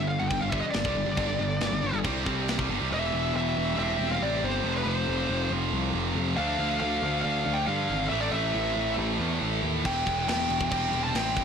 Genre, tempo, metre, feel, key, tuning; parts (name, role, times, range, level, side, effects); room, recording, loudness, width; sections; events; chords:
heavy metal; 138 BPM; 4/4; straight; E phrygian; A4 = 440 Hz
high-gain lead guitar; melody; 0.0-11.4 s; B4 to A5; -30 LUFS; left 1 dB; distortion, ping-pong delay
warm symphonic string section; sustained chords; 0.0-11.4 s; D3 to F5; -41 LUFS; equal
heavy high-gain guitar; riff; 0.0-11.4 s; E2 to D4; -32 LUFS; right 16 dB; distortion
scooped high-gain guitar; riff; 0.0-11.4 s; E2 to D4; -32 LUFS; left 13 dB; distortion
fuzz picked electric bass; bass; 0.0-11.4 s; E1 to G2; -31 LUFS; equal; overdrive
tight metal drum kit; drums; 0.3-2.7, 9.8-11.4 s; crash cymbal, kick drum, snare drum; -32 LUFS; equal; soft clipping on kick
light reverb; blown-out, overdriven recording, overdrive; -25 LUFS; side -7 dB against mid
0.0-2.9 A section; 2.9-11.4 B section
lead electric guitar solo 0.0-2.9
0.0 G5; 2.9 Em; 3.8 C/E; 4.6 F; 6.4 Dm; 8.1 Am; 9.8 Em; 10.7 C/E